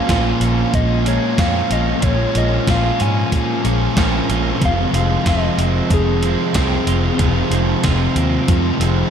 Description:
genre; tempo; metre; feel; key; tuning
rock, shoegaze and dream pop; 93 BPM; 4/4; straight; Bb minor; A4 = 439 Hz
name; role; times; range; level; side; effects
soft struck synth lead; melody; 0.0-9.1 s; Ab4 to Ab5; -24 LUFS; left 1 dB; chorus, tremolo, ping-pong delay
twelve-string electric guitar; arpeggios; 0.0-9.1 s; Eb3 to F4; -28 LUFS; equal; lush chorus, ping-pong delay
overdriven electric guitar; riff; 0.0-9.1 s; F2 to Db4; -21 LUFS; right 9 dB; reverse reverb
thick fuzz guitar; riff; 0.0-9.1 s; F2 to Bb3; -21 LUFS; left 6 dB; distortion, wide subtle chorus
vintage muted fingered electric bass; bass; 0.1-9.0 s; F1 to Bb2; -20 LUFS; equal; none
gated 80s digital drum machine; drums; 0.1-9.0 s; hi-hat, kick drum, snare drum; -20 LUFS; equal; gated reverb, gated reverb snare
room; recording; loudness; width
moderate plate reverb, RT60 2.5 s; dreamy mix soaked in reverb; -14 LUFS; side -8 dB against mid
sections
0.0-9.1 A section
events
none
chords
0.0 Bbm7; 4.6 Fm7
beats
0.09 0.74 1.39 | 2.03 2.68 3.32 3.97 | 4.62 5.26 5.91 6.55 | 7.20 7.84 8.49

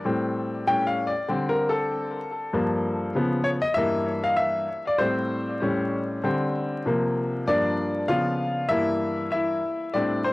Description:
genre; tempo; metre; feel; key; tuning
hip hop; 97 BPM; 4/4; swing 61% on 16ths; G dorian; A4 = 441 Hz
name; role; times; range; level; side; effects
clear concert grand piano; solo; 0.0-10.3 s; G2 to G5; -23 LUFS; left 1 dB; cassette tape, tape echo
room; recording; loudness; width
light reverb, small room ambience; home recording on cassette, vinyl crackle; -23 LUFS; side -20 dB against mid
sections
0.0-7.5 A section; 7.5-10.3 B section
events
grand piano solo 0.0-7.5, 7.5-10.3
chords
0.1 Am7; 0.7 Aaug7; 1.3 D7sus4; 2.5 Gm9; 3.2 C#7; 3.8 Gm6; 5.0 Am7; 5.6 A7#9; 6.2 D7sus4; 6.9 C7sus4; 7.5 Gm7; 8.1 C#7; 8.7 Gm6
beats
| 0.06 0.68 1.30 1.92 | 2.53 3.15 3.77 4.39 | 5.01 5.63 6.25 6.86 | 7.48 8.10 8.72 9.34 | 9.96

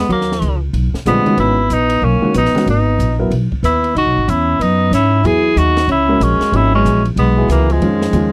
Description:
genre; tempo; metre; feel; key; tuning
modal jazz; 187 BPM; 4/4; swing 62% on 8ths; G# minor; A4 = 440 Hz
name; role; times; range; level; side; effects
clear tenor saxophone; melody; 0.0-8.3 s; G#3 to G#4; -19 LUFS; equal; none
breathy alto saxophone; second line; 0.0-8.3 s; E3 to E4; -21 LUFS; equal; none
upright bass; bass; 0.0-8.3 s; G#1 to G#2; -19 LUFS; equal; none
compact cocktail drum kit; drums; 0.1-8.2 s; hi-hat, kick drum, ride cymbal, snare drum; -33 LUFS; equal; none
warm grand piano; accompaniment; 1.1-8.3 s; D3 to A#4; -21 LUFS; equal; none
room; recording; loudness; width
little or no reverb; dry, close 1970s-style studio recording; -14 LUFS; mono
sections
0.0-8.3 A section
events
none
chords
0.0 G#m9; 4.0 C#m9; 7.8 C#add9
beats
| 0.10 0.42 0.74 1.07 | 1.39 1.71 2.03 2.35 | 2.67 3.00 3.32 3.64 | 3.96 4.28 4.60 4.92 | 5.24 5.57 5.89 6.21 | 6.53 6.85 7.17 7.49 | 7.81 8.13

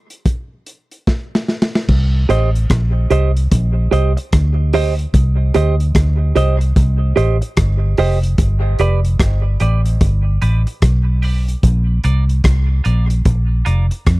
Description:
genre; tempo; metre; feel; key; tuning
dub reggae; 74 BPM; 4/4; swing 62% on 16ths; C dorian; A4 = 443 Hz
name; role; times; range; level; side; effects
crunchy breakbeat drum kit; drums; 0.1-14.2 s; crash cymbal, hi-hat, kick drum, rim click, snare drum; -17 LUFS; equal; none
vintage muted fingered electric bass; bass; 1.9-14.2 s; F1 to F2; -14 LUFS; equal; none
clean electric guitar; accompaniment; 2.3-13.9 s; F4 to Eb5; -20 LUFS; right 5 dB; wide subtle chorus, high-pass filter, dub echo
room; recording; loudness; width
studio reverb; dry, close 1970s-style studio recording; -13 LUFS; side -20 dB against mid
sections
0.0-1.9 A section; 1.9-14.2 B section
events
break 0.0-1.9; drum fill 1.1-1.9; filter sweep on clean electric guitar 5.1-14.2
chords
0.0 N.C.; 1.9 Cm; 8.4 G; 11.6 Bb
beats
0.26 1.07 | 1.89 2.70 3.52 4.33 | 5.14 5.95 6.76 7.58 | 8.39 9.20 10.01 10.82 | 11.63 12.44 13.25 14.06

